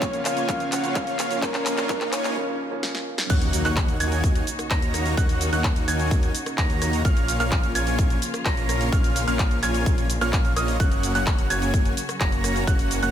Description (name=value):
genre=EDM, festival progressive house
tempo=128 BPM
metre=4/4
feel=straight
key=Eb minor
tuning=A4 = 441 Hz
part: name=breathy flute-like synth lead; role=melody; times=0.0-2.4 s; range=Bb4 to Gb5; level=-29 LUFS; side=equal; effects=chorus, digital delay
part: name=muted studio string section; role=sustained chords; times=0.0-13.1 s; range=Db3 to Eb5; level=-34 LUFS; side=left 1 dB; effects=sidechain pumping
part: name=dense compressed supersaw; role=riff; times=0.0-13.1 s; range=Bb3 to Bb5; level=-28 LUFS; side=equal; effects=sidechain pumping, digital delay
part: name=electronic kick drum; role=drums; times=0.0-12.8 s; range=none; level=-23 LUFS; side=equal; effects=small room ambience
part: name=house drum kit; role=drums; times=0.0-13.1 s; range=crash cymbal, handclaps, hi-hat, rim click, shaker, snare drum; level=-29 LUFS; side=equal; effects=small room ambience
part: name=riser and impact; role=sound effects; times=0.1-5.2 s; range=none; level=-34 LUFS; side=equal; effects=none
part: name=dark concert grand piano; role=accompaniment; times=0.1-3.5 s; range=Db3 to Db4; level=-33 LUFS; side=right 3 dB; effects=sidechain pumping, digital delay
part: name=clear grand piano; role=arpeggios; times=3.3-13.1 s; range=Eb6 to Bb6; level=-29 LUFS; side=right 3 dB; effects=sidechain pumping, digital delay
part: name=detuned saw bass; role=bass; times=3.3-13.1 s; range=Gb1 to Eb2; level=-27 LUFS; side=equal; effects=sidechain pumping
room=light reverb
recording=high-pass filter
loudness=-20 LUFS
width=side -10 dB against mid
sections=0.0-3.3 A section; 3.3-13.1 B section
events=build-up 0.0-3.3; drum fill 0.0-2.4, 2.8-3.3; filter sweep 0.0-3.3; break 2.4-3.3; drop 3.3-13.1; impact 3.3-5.2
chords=0.0 Eb7(no3); 3.3 Ebm7; 7.0 Bbm; 10.8 Gb